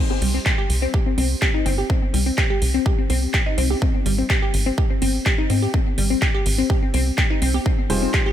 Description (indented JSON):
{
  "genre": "progressive house",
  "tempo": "125 BPM",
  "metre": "4/4",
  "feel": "straight",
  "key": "C minor",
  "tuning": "A4 = 442 Hz",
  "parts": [
    { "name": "congas", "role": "percussion", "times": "0.1-7.9 s", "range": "none", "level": "-33 LUFS", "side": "right 4 dB", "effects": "sidechain pumping on perc, studio reverb" },
    { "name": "glassy wavetable pluck", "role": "arpeggios", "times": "0.2-8.3 s", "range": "G3 to G4", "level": "-24 LUFS", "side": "left 2 dB", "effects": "chorus, sidechain pumping, ping-pong delay" },
    { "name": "tight sequencer bass", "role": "bass", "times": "0.2-8.1 s", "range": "F1 to Ab2", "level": "-21 LUFS", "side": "equal", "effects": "sidechain pumping" },
    { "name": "house drum kit", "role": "drums", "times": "0.2-8.2 s", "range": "handclaps, hi-hat", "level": "-26 LUFS", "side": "right 1 dB", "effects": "sidechain pumping on hats, studio reverb, sidechain pumping on cymbals" },
    { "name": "electronic kick drum", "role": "drums", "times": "0.5-8.2 s", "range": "none", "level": "-20 LUFS", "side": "equal", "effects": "studio reverb" },
    { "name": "dark baby grand piano", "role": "stabs", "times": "7.9-8.3 s", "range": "C4 to C5", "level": "-31 LUFS", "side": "left 1 dB", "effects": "sidechain pumping, ping-pong delay" }
  ],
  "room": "little or no reverb",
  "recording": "none",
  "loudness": "-18 LUFS",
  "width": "side -10 dB against mid",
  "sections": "0.0-8.3 A section",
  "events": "none",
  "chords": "0.0 C5; 3.8 Abmaj7; 7.7 Fm7"
}